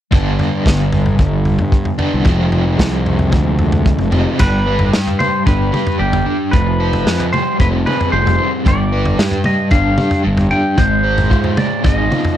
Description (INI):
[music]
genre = psychedelic rock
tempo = 113 BPM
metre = 4/4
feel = straight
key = G phrygian dominant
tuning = A4 = 439 Hz
[part]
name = crunchy overdriven guitar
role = riff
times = 0.1-12.4 s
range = F2 to C5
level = -17 LUFS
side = equal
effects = tremolo
[part]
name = fuzz fingered electric bass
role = bass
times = 0.1-12.1 s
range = F1 to Ab2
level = -18 LUFS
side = equal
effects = overdrive
[part]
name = crunchy breakbeat drum kit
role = drums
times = 0.1-12.4 s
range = crash cymbal, kick drum, snare drum, toms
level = -17 LUFS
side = equal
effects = none
[part]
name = clean lap steel guitar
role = melody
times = 4.4-12.4 s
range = G4 to G5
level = -19 LUFS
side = equal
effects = slapback echo
[sound]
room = light reverb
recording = dry, close 1970s-style studio recording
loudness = -12 LUFS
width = side -11 dB against mid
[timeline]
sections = 0.1-4.4 A section; 4.4-12.4 B section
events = none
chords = 0.1 G; 2.3 Fm; 4.4 G; 6.5 Fmadd9; 8.7 G; 10.8 Ab6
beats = | 0.12 0.65 1.19 1.72 | 2.26 2.79 3.33 3.86 | 4.39 4.93 5.46 6.00 | 6.53 7.06 7.59 8.13 | 8.66 9.19 9.72 10.26 | 10.79 11.32 11.85